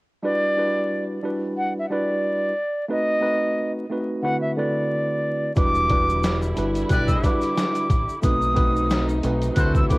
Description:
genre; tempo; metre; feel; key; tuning
hip hop, boom-bap hip-hop; 90 BPM; 4/4; swing 55% on 16ths; E minor; A4 = 439 Hz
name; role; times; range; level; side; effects
breathy silver concert flute; melody; 0.2-10.0 s; D5 to F#6; -24 LUFS; equal; high-pass filter, low-pass filter, cassette tape
tine electric piano; accompaniment; 0.2-10.0 s; D3 to B4; -25 LUFS; equal; medium stereo tremolo, high-pass filter, low-pass filter, cassette tape
warm studio string section; sustained chords; 5.6-10.0 s; C3 to E4; -31 LUFS; equal; high-pass filter, low-pass filter, cassette tape
deep dub fingered electric bass; bass; 5.6-9.8 s; E1 to D2; -25 LUFS; equal; transformer saturation
boom bap sampler-style drum kit; drums; 5.6-10.0 s; hi-hat, kick drum, snare drum; -22 LUFS; equal; cassette tape
tube shaker; percussion; 5.6-10.0 s; none; -47 LUFS; left 4 dB; none
clear trumpet section; stabs; 6.9-9.8 s; F#4 to D5; -32 LUFS; equal; high-pass filter, low-pass filter, cassette tape, tape echo
room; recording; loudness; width
light reverb; home recording on cassette, vinyl crackle; -20 LUFS; side -23 dB against mid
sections
0.2-5.6 A section; 5.6-10.0 B section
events
none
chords
0.2 Em7; 2.9 B7b9; 4.2 D13; 5.6 Em7; 8.2 B7b9

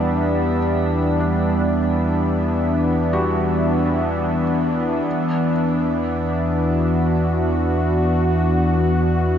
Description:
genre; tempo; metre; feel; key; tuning
ambient; free time; none; none; E minor; A4 = 440 Hz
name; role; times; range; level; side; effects
warm analog pad; sustained chords; 0.0-9.4 s; E3 to E5; -18 LUFS; equal; chorus, shimmer reverb
felt-muted upright piano; arpeggios; 0.0-9.4 s; D4 to G4; -30 LUFS; equal; diffuse ambient delay, shimmer reverb
warm sub bass; bass; 0.0-9.4 s; E2; -24 LUFS; equal; none
room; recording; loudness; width
wet cathedral reverb, RT60 5.1 s; nothing above 7.5 kHz; -17 LUFS; side -8 dB against mid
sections
0.0-9.4 A section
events
fade-out on felt piano 0.0-9.4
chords
0.0 Em7

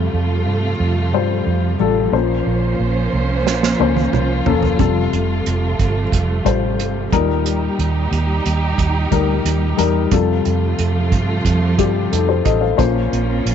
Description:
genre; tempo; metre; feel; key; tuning
piano-driven pop; 90 BPM; 4/4; straight; F mixolydian; A4 = 441 Hz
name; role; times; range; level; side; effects
dark upright piano; accompaniment; 0.0-13.5 s; Bb2 to F5; -20 LUFS; left 11 dB; none
warm studio string section; sustained chords; 0.0-13.5 s; Bb2 to C5; -22 LUFS; right 2 dB; none
vintage muted fingered electric bass; bass; 0.0-13.5 s; E1 to G2; -19 LUFS; right 2 dB; none
unplugged drum kit; drums; 3.5-13.5 s; hi-hat, kick drum, snare drum, toms; -20 LUFS; right 5 dB; none
room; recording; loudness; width
light reverb, small room ambience; 1960s-style stereo, nothing above 7.9 kHz; -15 LUFS; side -8 dB against mid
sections
0.0-13.5 A section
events
drum fill 3.5-4.8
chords
0.0 Fadd9; 2.1 Bbmadd9; 4.8 Fadd9; 7.1 Eb; 10.1 Fadd9; 12.8 Bbmadd9

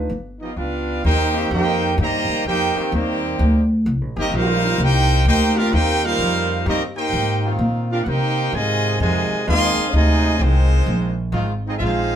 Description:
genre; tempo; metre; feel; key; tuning
jazz, big band swing; 128 BPM; 4/4; swing 65% on 8ths; C minor; A4 = 441 Hz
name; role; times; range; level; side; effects
upright bass; bass; 0.0-12.2 s; G1 to C3; -19 LUFS; equal; none
bright trumpet section; melody; 0.4-12.2 s; Ab3 to C6; -21 LUFS; equal; none
clear trombone section; second line; 0.4-12.2 s; C3 to G4; -24 LUFS; right 2 dB; none
clear trombone section; sustained chords; 1.3-12.0 s; Eb3 to G4; -27 LUFS; left 1 dB; none
room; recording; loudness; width
moderate studio reverb, RT60 0.6 s; band playing live in one room; -16 LUFS; side -9 dB against mid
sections
0.0-1.0 A section; 1.0-12.2 B section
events
none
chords
0.1 G7b13; 1.0 Cm7; 8.5 Fm7

